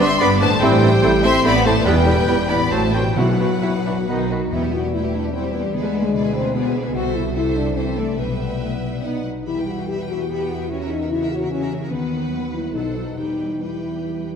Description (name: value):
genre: classical, dramatic, fast romantic movement for symphony orchestra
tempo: 130-151 BPM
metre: 3/4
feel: rubato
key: E minor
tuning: A4 = 439 Hz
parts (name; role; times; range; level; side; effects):
- clear symphonic violin section; melody; 0.0-14.3 s; D5 to C6; -29 LUFS; left 4 dB; none
- bright silver concert flute; second line; 0.0-4.3 s; F#5 to C6; -26 LUFS; left 1 dB; none
- clear chamber violin section; second line; 0.0-14.3 s; G4 to G5; -30 LUFS; equal; none
- clear oboe; second line; 0.0-4.4 s; B4 to D5; -29 LUFS; right 1 dB; none
- mellow clarinet; second line; 0.0-4.4 s; D4 to F#4; -27 LUFS; equal; none
- rich symphonic viola section; accompaniment; 0.0-14.3 s; B3 to B4; -29 LUFS; right 4 dB; none
- warm bassoon; accompaniment; 0.0-4.4 s; D#3 to B3; -28 LUFS; right 2 dB; none
- mellow French horn section; sustained chords; 0.0-14.3 s; F#3 to G4; -23 LUFS; left 3 dB; none
- concert harp; arpeggios; 0.0-14.4 s; E2 to D5; -28 LUFS; left 7 dB; none
- rich symphonic cello section; bass; 0.0-14.3 s; E2 to C#4; -26 LUFS; right 3 dB; none
- rich symphonic double bass section; bass; 0.0-14.3 s; E1 to E2; -27 LUFS; right 4 dB; none
- mellow trombone section; sustained chords; 0.6-4.2 s; D#3 to C4; -29 LUFS; right 4 dB; none
- timpani; percussion; 1.9-5.1 s; E2 to B2; -26 LUFS; equal; none
room: wet scoring stage reverb, RT60 2.0 s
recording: none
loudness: -17 LUFS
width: side -7 dB against mid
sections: 0.0-4.5 A section; 4.5-14.4 B section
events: none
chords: 0.0 G; 0.6 Am7; 1.9 Em; 2.7 F#dim/A; 3.2 Bsus4; 4.1 B; 4.5 Em; 5.7 E7/D; 6.9 Am/C; 8.2 Em/B; 9.0 B; 9.5 Em; 10.7 F#7/E; 11.9 B/D#; 12.7 B7b9; 13.2 Em